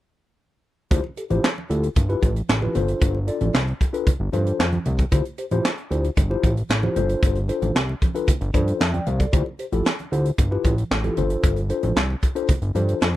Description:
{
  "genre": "early-eighties boogie funk",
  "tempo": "114 BPM",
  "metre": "4/4",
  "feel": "straight",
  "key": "D dorian",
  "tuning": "A4 = 440 Hz",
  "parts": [
    { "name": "mellow tine electric piano", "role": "accompaniment", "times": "0.9-13.1 s", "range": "D4 to A5", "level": "-25 LUFS", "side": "left 3 dB", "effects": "medium stereo tremolo" },
    { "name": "fat analog bass", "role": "bass", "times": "0.9-13.2 s", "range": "G1 to G2", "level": "-23 LUFS", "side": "equal", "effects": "none" },
    { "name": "tight funk drum kit", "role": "drums", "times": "0.9-13.1 s", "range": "handclaps, hi-hat, kick drum, snare drum", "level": "-21 LUFS", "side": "equal", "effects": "none" },
    { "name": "congas", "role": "percussion", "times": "0.9-12.9 s", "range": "none", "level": "-30 LUFS", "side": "right 2 dB", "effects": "none" }
  ],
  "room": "little or no reverb",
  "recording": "lossy compression artefacts",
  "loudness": "-19 LUFS",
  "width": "side -15 dB against mid",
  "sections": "0.9-13.2 A section",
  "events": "none",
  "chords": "0.9 Dm11; 2.8 G9sus4; 5.1 Dm11; 7.0 G9sus4"
}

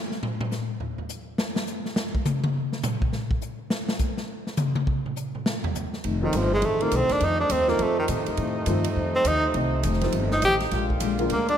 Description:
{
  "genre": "jazz, big band swing",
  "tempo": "206 BPM",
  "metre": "4/4",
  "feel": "swing 62% on 8ths",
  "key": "F mixolydian",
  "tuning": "A4 = 438 Hz",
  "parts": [
    { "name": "swinging big-band drum kit", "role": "drums", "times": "0.1-11.5 s", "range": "hi-hat, kick drum, ride cymbal, snare drum, toms", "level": "-28 LUFS", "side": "equal", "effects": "none" },
    { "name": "fingerpicked steel-string acoustic guitar", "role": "accompaniment", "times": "6.0-11.5 s", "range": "F2 to D4", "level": "-31 LUFS", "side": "left 4 dB", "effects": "wide subtle chorus" },
    { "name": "brilliant trombone section", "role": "sustained chords", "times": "6.0-11.6 s", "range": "C3 to F4", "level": "-32 LUFS", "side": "right 1 dB", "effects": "none" },
    { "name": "upright bass", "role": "bass", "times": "6.0-11.6 s", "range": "F1 to Bb2", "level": "-27 LUFS", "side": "equal", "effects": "none" },
    { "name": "bright tenor saxophone", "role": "melody", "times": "6.2-11.6 s", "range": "Eb3 to G4", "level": "-24 LUFS", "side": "right 1 dB", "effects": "diffuse ambient delay" },
    { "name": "warm upright piano", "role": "accompaniment", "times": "6.2-11.3 s", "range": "D3 to F4", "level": "-31 LUFS", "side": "equal", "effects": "wide subtle chorus" }
  ],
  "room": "moderate lush hall reverb, RT60 2.1 s",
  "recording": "dreamy mix soaked in reverb",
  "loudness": "-23 LUFS",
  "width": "side -9 dB against mid",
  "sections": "0.0-6.0 A section; 6.0-11.6 A section",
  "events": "drum solo 0.0-6.0; tenor saxophone solo 6.0-11.6",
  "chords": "0.0 N.C.; 6.0 F7; 10.7 Bb7"
}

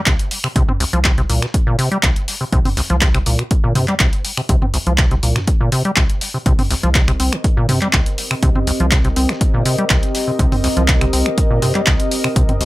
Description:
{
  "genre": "acid house",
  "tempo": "122 BPM",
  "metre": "4/4",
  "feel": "straight",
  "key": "unclear",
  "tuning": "A4 = 439 Hz",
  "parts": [
    { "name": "acid bass, square", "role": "riff", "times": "0.1-12.7 s", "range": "C2 to C4", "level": "-20 LUFS", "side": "equal", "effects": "tube saturation, vintage 12-bit sampler grit" },
    { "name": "saturated sub bass", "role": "bass", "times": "0.1-12.5 s", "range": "G1 to C2", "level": "-19 LUFS", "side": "equal", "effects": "sidechain pumping" },
    { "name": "dusty soul sampler-style drum kit", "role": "drums", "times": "0.1-12.7 s", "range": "hi-hat, snare drum", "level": "-30 LUFS", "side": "right 2 dB", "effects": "none" },
    { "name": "electronic kick drum", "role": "drums", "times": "0.1-12.5 s", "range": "none", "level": "-17 LUFS", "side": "equal", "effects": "none" },
    { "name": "punchy analog drum machine", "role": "drums", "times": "0.1-12.7 s", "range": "finger snaps, handclaps, hi-hat, toms", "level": "-20 LUFS", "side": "equal", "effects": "overdrive" },
    { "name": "warm analog pad", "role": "sustained chords", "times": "6.9-12.7 s", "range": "C4 to Eb5", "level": "-23 LUFS", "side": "equal", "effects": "chorus, sidechain pumping" }
  ],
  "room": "light reverb",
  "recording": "none",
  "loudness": "-14 LUFS",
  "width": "side -18 dB against mid",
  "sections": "0.0-12.7 A section",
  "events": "none",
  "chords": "0.0 Cm7"
}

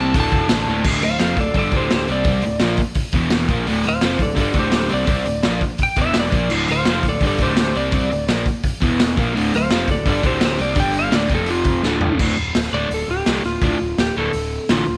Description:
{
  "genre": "garage rock duo or trio",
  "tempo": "169 BPM",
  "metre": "4/4",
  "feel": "straight",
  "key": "D minor",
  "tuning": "A4 = 440 Hz",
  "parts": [
    { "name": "electric slide guitar", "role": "melody", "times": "0.0-15.0 s", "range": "F4 to A5", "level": "-25 LUFS", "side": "equal", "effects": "none" },
    { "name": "crunchy overdriven guitar", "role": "riff", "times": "0.0-14.8 s", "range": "D2 to C4", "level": "-24 LUFS", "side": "equal", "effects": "none" },
    { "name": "fuzz picked electric bass", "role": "bass", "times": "0.0-15.0 s", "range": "D1 to C2", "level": "-28 LUFS", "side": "equal", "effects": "overdrive" },
    { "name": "raw garage drum kit", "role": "drums", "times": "0.1-14.8 s", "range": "crash cymbal, hi-hat, kick drum, snare drum, toms", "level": "-23 LUFS", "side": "equal", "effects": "none" }
  ],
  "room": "light reverb, small room ambience",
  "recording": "none",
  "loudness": "-19 LUFS",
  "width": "mono",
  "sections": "0.9-12.2 A section; 12.2-15.0 B section",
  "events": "drum fill 11.8-12.2; electric slide guitar solo 12.2-15.0",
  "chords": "0.2 Dm; 3.1 E5; 3.5 Dm; 6.0 E5; 6.3 Dm; 8.8 E5; 9.2 Dm; 10.8 G5; 11.1 D5; 11.3 F5; 11.8 Dm"
}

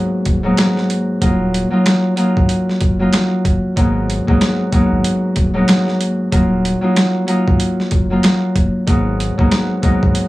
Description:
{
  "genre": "hip hop, boom-bap hip-hop",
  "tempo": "94 BPM",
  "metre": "4/4",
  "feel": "swing 60% on 16ths",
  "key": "Eb minor",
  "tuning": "A4 = 440 Hz",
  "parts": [
    { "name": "Celtic harp", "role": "accompaniment", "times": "0.0-10.3 s", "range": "Ab2 to F4", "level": "-15 LUFS", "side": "equal", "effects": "high-pass filter, low-pass filter" },
    { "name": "warm sub bass", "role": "bass", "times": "0.3-10.1 s", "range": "Eb1 to Ab1", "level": "-20 LUFS", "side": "equal", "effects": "none" },
    { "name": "boom bap sampler-style drum kit", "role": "drums", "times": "0.3-10.3 s", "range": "hi-hat, kick drum, snare drum", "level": "-16 LUFS", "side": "equal", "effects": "none" }
  ],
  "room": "light reverb",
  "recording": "small room ambience",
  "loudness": "-13 LUFS",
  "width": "side -18 dB against mid",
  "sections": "0.0-10.3 A section",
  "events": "none",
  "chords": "0.0 Abm7; 1.2 Ebmadd9; 3.8 Abm7; 6.3 Ebmadd9; 8.9 Abm7"
}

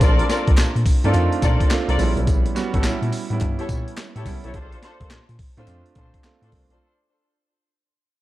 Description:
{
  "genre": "R&B, new jack swing",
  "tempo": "106 BPM",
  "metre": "4/4",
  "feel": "swing 65% on 16ths",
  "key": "unclear",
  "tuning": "A4 = 440 Hz",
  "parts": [
    { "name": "warm grand piano", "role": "accompaniment", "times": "0.0-6.8 s", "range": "G3 to Gb4", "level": "-26 LUFS", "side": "right 5 dB", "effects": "none" },
    { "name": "muted studio string section", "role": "stabs", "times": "0.0-6.9 s", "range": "D4 to D5", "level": "-27 LUFS", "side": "left 3 dB", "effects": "digital delay" },
    { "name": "bell-like tine electric piano", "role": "bass", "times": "0.0-6.8 s", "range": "A1 to Bb2", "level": "-22 LUFS", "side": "equal", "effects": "none" },
    { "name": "breakbeat sampler-style drum kit", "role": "drums", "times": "0.0-6.8 s", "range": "handclaps, hi-hat, kick drum, snare drum, tambourine", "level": "-20 LUFS", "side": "equal", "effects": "none" },
    { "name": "group handclap", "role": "percussion", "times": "0.6-6.4 s", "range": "none", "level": "-40 LUFS", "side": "left 4 dB", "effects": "none" }
  ],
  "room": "small room ambience",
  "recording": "dark, warm production",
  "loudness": "-17 LUFS",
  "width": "side -16 dB against mid",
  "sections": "0.0-6.8 A section",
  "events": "fade-out 0.0-6.8",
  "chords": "0.0 Bbmaj7; 2.0 A7; 4.5 Dm7/Bb"
}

